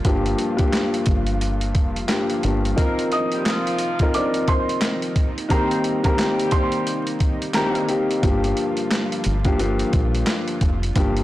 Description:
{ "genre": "hip hop, boom-bap hip-hop", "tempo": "88 BPM", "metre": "4/4", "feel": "swing 60% on 16ths", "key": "G minor", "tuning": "A4 = 440 Hz", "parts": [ { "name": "warm concert grand piano", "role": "accompaniment", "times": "0.0-11.2 s", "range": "G2 to Bb4", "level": "-23 LUFS", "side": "left 2 dB", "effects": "cassette tape, high-pass filter, low-pass filter" }, { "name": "lush unison pad", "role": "sustained chords", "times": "0.0-11.2 s", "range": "C3 to F4", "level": "-32 LUFS", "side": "right 2 dB", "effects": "chorus, high-pass filter, low-pass filter" }, { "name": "boom bap sampler-style drum kit", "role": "drums", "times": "0.0-11.2 s", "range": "handclaps, hi-hat, kick drum, snare drum", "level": "-22 LUFS", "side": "equal", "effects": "none" }, { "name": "deep dub fingered electric bass", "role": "bass", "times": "0.1-2.7, 8.2-11.2 s", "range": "F1 to Bb1", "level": "-23 LUFS", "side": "equal", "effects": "transformer saturation" }, { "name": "clear horn section", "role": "stabs", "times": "2.8-7.8 s", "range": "F3 to C5", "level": "-29 LUFS", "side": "equal", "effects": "high-pass filter, low-pass filter, slapback echo" }, { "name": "dark upright piano", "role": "melody", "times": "3.1-7.9 s", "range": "Bb4 to Eb6", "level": "-26 LUFS", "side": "right 2 dB", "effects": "high-pass filter, low-pass filter, slapback echo" } ], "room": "light reverb, studio reverb", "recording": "blown-out, overdriven recording, vinyl crackle, overdrive", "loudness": "-18 LUFS", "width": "side -15 dB against mid", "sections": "0.0-11.2 A section", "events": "none", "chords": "0.0 Gm7; 2.8 F7sus4; 5.5 Eb6; 8.2 Gm7" }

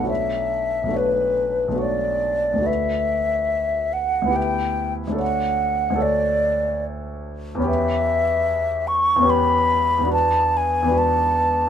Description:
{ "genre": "classical, impressionist duo for flute and grand piano", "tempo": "72 BPM", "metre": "3/4", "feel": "rubato", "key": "B minor", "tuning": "A4 = 440 Hz", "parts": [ { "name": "mellow hollow silver concert flute", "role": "melody", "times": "0.0-11.7 s", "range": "B4 to C#6", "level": "-20 LUFS", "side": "left 1 dB", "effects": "none" }, { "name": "clear grand piano", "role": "accompaniment", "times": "0.0-11.7 s", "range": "F#1 to C#5", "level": "-23 LUFS", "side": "equal", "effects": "none" } ], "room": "light reverb", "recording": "minimal, uncompressed stereo recording", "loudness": "-18 LUFS", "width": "side -9 dB against mid", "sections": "0.0-11.7 A section", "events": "none", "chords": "0.1 Bm11; 2.7 D69; 4.4 Em7/D; 7.7 Em6; 10.1 Bm7/E" }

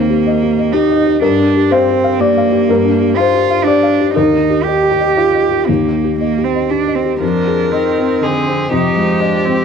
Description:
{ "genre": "neoclassical piano and strings", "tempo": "121 BPM", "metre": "3/4", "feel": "rubato", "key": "unclear", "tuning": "A4 = 438 Hz", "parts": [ { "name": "rich cello", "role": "second line", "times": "0.0-9.6 s", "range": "C3 to G4", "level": "-15 LUFS", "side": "right 9 dB", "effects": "cassette tape" }, { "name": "felt-muted upright piano", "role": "accompaniment", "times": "0.0-9.6 s", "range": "Eb2 to F5", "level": "-14 LUFS", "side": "left 6 dB", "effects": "cassette tape" }, { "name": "rich violin", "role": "melody", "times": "7.2-9.6 s", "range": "G4 to Bb4", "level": "-17 LUFS", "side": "left 4 dB", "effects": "cassette tape" }, { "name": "clear viola", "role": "accompaniment", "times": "7.2-9.6 s", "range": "C4 to Eb4", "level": "-22 LUFS", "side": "right 9 dB", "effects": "cassette tape" } ], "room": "moderate spring reverb, RT60 2.7 s", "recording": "home recording on cassette", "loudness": "-11 LUFS", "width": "side -6 dB against mid", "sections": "0.0-7.2 A section; 7.2-9.6 B section", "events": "none", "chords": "0.0 Cm7/Eb; 1.2 Gm7; 4.2 Eb; 7.2 Fm7" }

